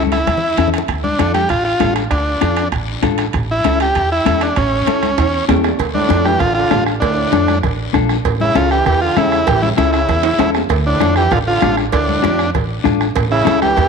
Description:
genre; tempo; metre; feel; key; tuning
latin, cumbia; 196 BPM; 4/4; straight; D harmonic minor; A4 = 439 Hz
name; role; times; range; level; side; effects
overdriven combo organ; melody; 0.0-13.9 s; C#4 to G4; -17 LUFS; right 1 dB; none
clean electric guitar; accompaniment; 0.0-13.7 s; C#4 to G5; -20 LUFS; left 10 dB; none
upright bass; bass; 0.0-13.9 s; A1 to F2; -20 LUFS; right 1 dB; none
bombo; percussion; 0.1-13.9 s; none; -23 LUFS; right 6 dB; none
congas; percussion; 0.1-13.9 s; none; -25 LUFS; left 9 dB; none
guiro; percussion; 0.1-13.9 s; none; -32 LUFS; left 12 dB; none
timbales and cowbell; percussion; 0.1-13.9 s; none; -24 LUFS; right 14 dB; none
bright trombone; second line; 6.0-13.9 s; A2 to E3; -23 LUFS; right 11 dB; none
room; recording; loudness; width
moderate plate reverb, RT60 3.1 s; 1960s-style stereo with parts hard left and right; -13 LUFS; side -5 dB against mid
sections
0.0-5.8 A section; 5.8-13.9 A section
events
drum fill 0.0-0.9, 5.2-5.8, 10.2-10.7; clean electric guitar fill 5.3-5.8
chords
0.0 A; 0.9 Dm; 3.3 A; 5.8 Dm; 8.2 A; 10.7 Dm; 13.2 A7

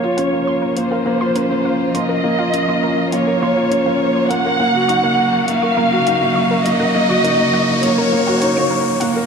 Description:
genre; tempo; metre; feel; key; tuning
piano and strings electronica; 102 BPM; 4/4; straight; Bb minor; A4 = 440 Hz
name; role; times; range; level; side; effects
dark studio violin section; melody; 0.0-9.0 s; C5 to Gb5; -18 LUFS; equal; low-pass filter, ping-pong delay
clear studio string section; sustained chords; 0.0-9.3 s; Db3 to Gb4; -23 LUFS; equal; low-pass filter
felt-muted upright piano; riff; 0.0-9.3 s; Bb3 to Bb4; -18 LUFS; equal; ping-pong delay
riser; sound effects; 2.3-9.3 s; none; -29 LUFS; left 2 dB; none
warbly dusty pluck; arpeggios; 0.2-9.1 s; Bb4 to Db6; -29 LUFS; right 1 dB; chorus, ping-pong delay
electronic hi-hat; drums; 0.2-9.1 s; none; -29 LUFS; equal; overdrive, high-pass filter on hats
room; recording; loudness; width
wet lush hall reverb, RT60 2.3 s; dark, warm production; -14 LUFS; side -6 dB against mid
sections
0.0-9.3 A section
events
build-up 0.0-9.3; riser 2.3-9.3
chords
0.0 Bbmadd9; 4.6 Ebm7

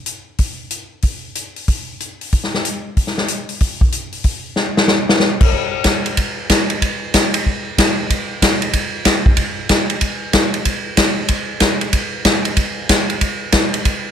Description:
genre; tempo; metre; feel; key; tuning
jazz; 187 BPM; 4/4; swing 63% on 8ths; none; none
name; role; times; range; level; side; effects
swinging big-band drum kit; drums; 0.1-13.9 s; crash cymbal, hi-hat, kick drum, ride cymbal, snare drum; -15 LUFS; equal; none
room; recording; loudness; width
light reverb; close, detailed microphones; -15 LUFS; side -8 dB against mid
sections
0.0-5.5 A section; 5.5-14.1 B section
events
drum fill 4.6-5.2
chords
none

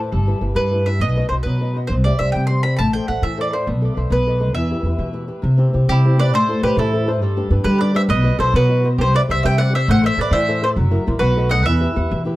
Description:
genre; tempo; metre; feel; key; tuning
italian folk, Italian serenade; 135 BPM (dotted quarters); 6/8; straight; E minor; A4 = 440 Hz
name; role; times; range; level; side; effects
flamenco guitar; accompaniment; 0.0-12.4 s; B2 to E5; -24 LUFS; left 2 dB; none
upright bass; bass; 0.0-12.4 s; F#1 to G3; -18 LUFS; equal; none
mandolin; melody; 0.6-12.2 s; G4 to C6; -21 LUFS; equal; tape echo
mandolin; second line; 5.9-12.2 s; E4 to E5; -27 LUFS; right 6 dB; none
room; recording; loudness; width
light reverb; dark, warm production; -15 LUFS; side -17 dB against mid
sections
0.0-5.4 A section; 5.4-12.4 A section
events
none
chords
0.1 Em/G; 1.0 B; 1.9 C; 2.8 Am; 3.7 B7sus4; 4.1 B7; 4.6 Em; 5.4 C; 6.3 Am; 7.2 G; 8.1 B; 9.0 C; 9.9 Am; 10.8 F#7; 11.2 B7; 11.7 Em

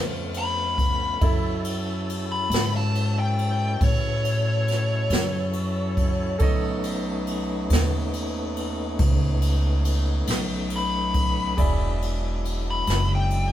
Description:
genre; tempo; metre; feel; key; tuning
slow blues; 46 BPM (dotted quarters); 12/8; straight; unclear; A4 = 440 Hz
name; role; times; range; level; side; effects
bright upright piano; accompaniment; 0.0-13.5 s; E4 to E#5; -33 LUFS; right 6 dB; none
tonewheel organ; sustained chords; 0.0-13.5 s; F#3 to A4; -32 LUFS; equal; overdrive, fast rotary speaker
upright bass; bass; 0.0-13.5 s; E1 to A2; -25 LUFS; equal; none
jazz brush drum kit; drums; 0.3-13.5 s; kick drum, ride cymbal, snare drum; -27 LUFS; equal; none
smooth overdriven lead guitar; melody; 0.4-13.5 s; C#5 to B5; -27 LUFS; left 3 dB; none
room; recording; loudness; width
moderate stone room reverb, RT60 1.2 s; band playing live in one room; -21 LUFS; side -12 dB against mid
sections
0.0-13.5 A section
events
lead electric guitar solo 0.0-13.5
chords
0.0 C#aug7; 1.2 F#m7; 6.4 B9; 11.6 E9

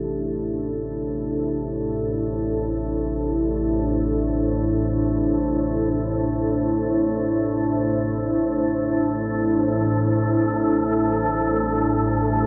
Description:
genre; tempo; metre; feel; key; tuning
dark ambient drone; free time; none; none; A minor; A4 = 439 Hz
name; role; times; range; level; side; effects
deep dark ambient pad; sustained chords; 0.0-12.5 s; D4 to C5; -24 LUFS; equal; chorus, built-in reverb
quartz singing bowl; arpeggios; 0.0-5.1 s; C3 to G4; -38 LUFS; equal; none
organ-like drone; drone; 0.0-12.5 s; A1 to A2; -28 LUFS; equal; ensemble chorus, built-in reverb
wind-like tuned noise texture; texture; 9.3-12.5 s; A4; -29 LUFS; equal; built-in reverb
room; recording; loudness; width
wet huge ambient reverb, RT60 7.4 s; none; -22 LUFS; mono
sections
0.0-12.5 A section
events
fade-in on synth drone 0.0-12.5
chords
0.0 A5

